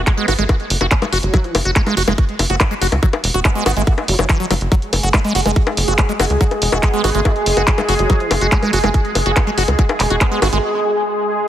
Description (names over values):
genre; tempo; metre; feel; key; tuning
psychedelic trance; 142 BPM; 4/4; straight; unclear; A4 = 441 Hz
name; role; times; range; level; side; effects
vowel-sweep wobble bass; second line; 0.0-10.6 s; F#3 to B3; -29 LUFS; right 2 dB; ensemble chorus, sidechain pumping, high-pass filter, ping-pong delay
liquid acid bass; riff; 0.0-10.6 s; E3 to F#4; -21 LUFS; moving between left 3 dB and right 4 dB; phaser, auto-pan, sidechain pumping, dub echo
tight sequencer bass; bass; 0.0-10.6 s; E1 to C#2; -18 LUFS; equal; none
drum and bass drum kit; drums; 0.1-10.6 s; bongos, handclaps, hi-hat; -20 LUFS; left 2 dB; none
electronic kick drum; drums; 0.1-10.3 s; none; -15 LUFS; equal; none
bubbling stepped-filter texture; sustained chords; 4.7-11.5 s; G#3 to G#4; -20 LUFS; equal; chorus, built-in reverb, sidechain pumping
room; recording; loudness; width
moderate lush hall reverb, RT60 1.8 s, digital ambience; heavily compressed radio sound, multiband compression; -14 LUFS; side -11 dB against mid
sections
0.0-11.5 A section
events
break 10.6-11.5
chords
0.0 F#5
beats
0.07 0.49 0.91 | 1.34 1.76 2.18 2.60 | 3.03 3.45 3.87 4.29 | 4.72 5.14 5.56 5.99 | 6.41 6.83 7.25 7.67 | 8.10 8.52 8.94 9.37 | 9.79 10.21 10.63 11.05